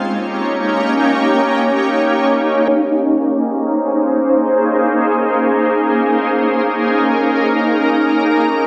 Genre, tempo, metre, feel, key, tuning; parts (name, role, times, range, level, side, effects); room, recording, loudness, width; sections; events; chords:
hip hop; free time; Bb dorian; A4 = 440 Hz
shimmering ambient pad; solo; 0.0-8.7 s; Bb3 to Db5; -15 LUFS; equal; chorus, built-in reverb, low-pass filter, digital delay
wet recital hall reverb, RT60 1.9 s; dark, warm production; -15 LUFS; mono
0.0-2.7 A section; 2.7-8.7 B section
filter sweep on ambient pad 2.7-8.7
0.0 Eb7; 2.7 Bbm11